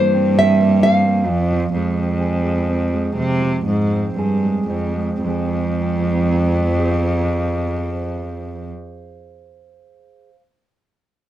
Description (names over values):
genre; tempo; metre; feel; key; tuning
acoustic folk-pop ballad; 56-68 BPM; 4/4; straight; F minor; A4 = 440 Hz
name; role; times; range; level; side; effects
nylon-string guitar; melody; 0.0-4.1 s; C5 to F5; -18 LUFS; equal; none
mellow electric guitar; accompaniment; 0.0-10.4 s; F2 to F5; -23 LUFS; right 3 dB; none
warm cello; bass; 0.0-8.7 s; F2 to C3; -18 LUFS; equal; none
room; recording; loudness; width
light reverb; band playing live in one room; -16 LUFS; side -12 dB against mid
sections
0.0-5.2 A section; 5.2-9.4 B section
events
slowing down 0.0-5.2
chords
0.0 C7; 1.3 Fm